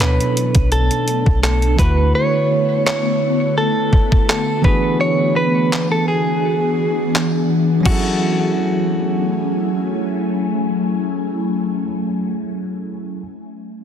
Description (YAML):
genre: contemporary R&B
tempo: 84 BPM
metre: 4/4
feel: swing 54% on 16ths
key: F# minor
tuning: A4 = 441 Hz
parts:
  - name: direct-recorded clean electric guitar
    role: melody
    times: 0.0-11.9 s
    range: F#4 to C#5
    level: -20 LUFS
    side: equal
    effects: digital delay
  - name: bell-like tine electric piano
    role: accompaniment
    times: 0.0-13.2 s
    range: B2 to C#5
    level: -22 LUFS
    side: right 2 dB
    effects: medium stereo tremolo
  - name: ethereal airy pad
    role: sustained chords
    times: 0.0-11.5 s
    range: D3 to G#5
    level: -21 LUFS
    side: left 2 dB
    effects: ensemble chorus, built-in reverb, phaser
  - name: clean 808-style bass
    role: bass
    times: 0.0-2.1 s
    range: B1 to D2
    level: -16 LUFS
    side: equal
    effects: none
  - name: detuned 8-bit digital drum machine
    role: drums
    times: 0.0-8.0 s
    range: crash cymbal, handclaps, hi-hat, kick drum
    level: -18 LUFS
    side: equal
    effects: none
  - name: downlifter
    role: sound effects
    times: 0.0-2.1 s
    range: none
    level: barely audible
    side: none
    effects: none
room: light reverb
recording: dense, heavily limited modern master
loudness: -15 LUFS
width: side -8 dB against mid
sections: 0.0-7.9 A section; 7.9-10.7 B section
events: none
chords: 0.0 Bm7; 1.8 D6; 4.6 E7; 7.9 F#m7